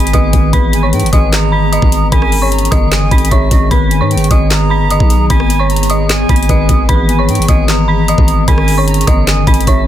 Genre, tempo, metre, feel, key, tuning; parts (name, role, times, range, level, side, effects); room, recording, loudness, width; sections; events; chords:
hip hop, trap; 151 BPM; 4/4; half-time; G# minor; A4 = 436 Hz
dark detuned synth bell; melody; 0.0-9.9 s; C#5 to B6; -17 LUFS; right 1 dB; chorus
hollow concert flute; second line; 0.0-9.9 s; D#5 to A#5; -22 LUFS; right 7 dB; ping-pong delay
warbly lo-fi synth keys; accompaniment; 0.0-9.9 s; D#3 to B4; -20 LUFS; left 2 dB; chorus
ethereal airy pad; sustained chords; 0.0-9.9 s; D#3 to G#4; -20 LUFS; left 2 dB; ensemble chorus, built-in reverb
growling 808-style bass; bass; 0.0-9.9 s; G1 to G#2; -14 LUFS; equal
trap drum kit; drums; 0.0-9.8 s; handclaps, hi-hat, kick drum, rim click, snare drum; -12 LUFS; equal
little or no reverb; dense, heavily limited modern master; -9 LUFS; side -12 dB against mid
0.0-9.9 A section
0.0 G#m; 0.5 E/G#; 2.1 D#7sus4; 3.7 G#m; 6.9 E/G#; 8.5 D#7sus4